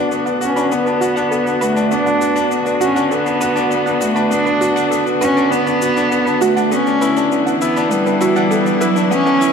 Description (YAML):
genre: piano and strings electronica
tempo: 100 BPM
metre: 4/4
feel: straight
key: B minor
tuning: A4 = 439 Hz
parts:
  - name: rich cello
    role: melody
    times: 0.0-9.5 s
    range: F#3 to D4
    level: -17 LUFS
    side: right 1 dB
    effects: low-pass filter, tape echo
  - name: bright studio string section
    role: sustained chords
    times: 0.0-9.5 s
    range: D3 to B4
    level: -24 LUFS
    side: equal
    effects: low-pass filter
  - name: bright grand piano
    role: riff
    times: 0.0-9.5 s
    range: B3 to F#4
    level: -17 LUFS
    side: left 2 dB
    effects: tape echo
  - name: shaker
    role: drums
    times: 0.1-9.5 s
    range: none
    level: -33 LUFS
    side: left 4 dB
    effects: overdrive
  - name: analog pluck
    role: arpeggios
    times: 0.3-9.3 s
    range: F#4 to B5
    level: -23 LUFS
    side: right 5 dB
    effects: chorus, cassette tape, tape echo
room: wet lush hall reverb, RT60 2.5 s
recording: high-pass filter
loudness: -13 LUFS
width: side -6 dB against mid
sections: 0.0-9.5 A section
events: build-up 0.0-9.5; filter sweep on string section 0.0-9.5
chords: 0.0 Bm; 6.7 Em7